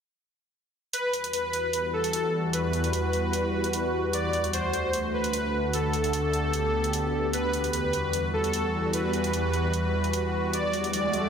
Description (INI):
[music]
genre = heavy wobble dubstep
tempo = 150 BPM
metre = 4/4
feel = half-time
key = E minor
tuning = A4 = 440 Hz
[part]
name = soft supersaw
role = melody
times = 0.9-11.3 s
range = A4 to D5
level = -28 LUFS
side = equal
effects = analog delay
[part]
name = evolving wavetable pad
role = sustained chords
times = 1.4-11.3 s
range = D2 to G4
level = -28 LUFS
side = equal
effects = phaser, built-in reverb
[part]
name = electronic hi-hat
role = drums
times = 0.9-11.2 s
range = none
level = -33 LUFS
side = right 2 dB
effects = overdrive
[part]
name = riser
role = sound effects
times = 10.7-11.3 s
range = none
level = -32 LUFS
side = right 2 dB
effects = none
[sound]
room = wet lush hall reverb, RT60 1.9 s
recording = dreamy mix soaked in reverb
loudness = -24 LUFS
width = side -7 dB against mid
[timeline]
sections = 0.9-11.3 A section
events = riser 10.7-11.3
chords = 0.9 Emadd9; 4.1 D; 5.7 G/D; 7.3 Emadd9; 10.5 D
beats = | 0.93 1.33 1.73 2.13 | 2.53 2.93 3.33 3.73 | 4.13 4.53 4.93 5.33 | 5.73 6.13 6.53 6.93 | 7.33 7.73 8.13 8.53 | 8.93 9.33 9.73 10.13 | 10.53 10.93